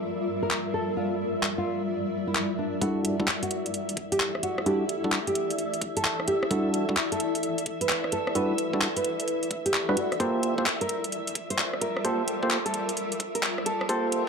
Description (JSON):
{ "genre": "UK garage, two-step garage", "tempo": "130 BPM", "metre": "4/4", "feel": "swing 65% on 16ths", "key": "unclear", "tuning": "A4 = 440 Hz", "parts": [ { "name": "soft string machine", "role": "sustained chords", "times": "0.0-14.3 s", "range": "E5", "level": "-37 LUFS", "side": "equal", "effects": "ensemble chorus, sidechain pumping" }, { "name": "granular cloud pad", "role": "texture", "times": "0.0-14.3 s", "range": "G3 to D5", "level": "-31 LUFS", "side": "left 1 dB", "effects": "built-in reverb, sidechain pumping" }, { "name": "nylon-string guitar", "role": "melody", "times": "0.4-14.1 s", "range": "D4 to C5", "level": "-31 LUFS", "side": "right 2 dB", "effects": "digital delay" }, { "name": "garage drum kit", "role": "drums", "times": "0.5-14.2 s", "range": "handclaps, hi-hat, rim click", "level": "-28 LUFS", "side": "left 1 dB", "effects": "small room ambience" }, { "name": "percussive organ stab", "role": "stabs", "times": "2.8-14.2 s", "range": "G3 to C5", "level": "-28 LUFS", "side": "right 1 dB", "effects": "chorus, digital delay" }, { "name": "electronic kick drum", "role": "drums", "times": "2.8-14.0 s", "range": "none", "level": "-35 LUFS", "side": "equal", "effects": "high-pass filter on kick, small room ambience" } ], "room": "moderate plate reverb, RT60 1.5 s", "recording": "dark, warm production, high-pass filter", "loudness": "-25 LUFS", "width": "side -5 dB against mid", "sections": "0.0-2.8 A section; 2.8-14.3 B section", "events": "build-up 2.8-14.3; filter sweep on synth stab 2.8-14.3", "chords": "0.0 Gm7; 2.8 Em11; 10.2 Gm11" }